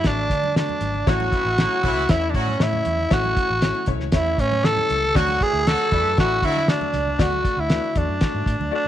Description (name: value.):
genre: uptempo 1960s-style soul.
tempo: 118 BPM.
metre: 4/4.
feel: straight.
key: A major.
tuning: A4 = 438 Hz.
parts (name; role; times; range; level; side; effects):
growling tenor saxophone; melody; 0.0-8.9 s; C#4 to A4; -22 LUFS; equal; none.
vibraphone with soft mallets; second line; 0.0-8.9 s; C#5 to A5; -34 LUFS; right 13 dB; none.
vintage muted fingered electric bass; bass; 0.0-8.9 s; G#1 to D3; -26 LUFS; equal; none.
cloth-damped thuddy drum kit; drums; 0.0-8.6 s; hi-hat, kick drum, snare drum; -22 LUFS; equal; none.
clear concert grand piano; accompaniment; 0.1-8.9 s; A3 to D5; -30 LUFS; left 12 dB; none.
congas; percussion; 0.4-8.9 s; none; -37 LUFS; right 11 dB; none.
clear horn section; second line; 1.1-6.6 s; E3 to F#4; -29 LUFS; right 1 dB; none.
room: light reverb, small room ambience.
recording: 1960s-style stereo with parts hard left and right.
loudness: -18 LUFS.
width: side -11 dB against mid.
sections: 0.0-8.9 A section.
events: none.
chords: 0.0 D; 1.1 A; 5.2 D.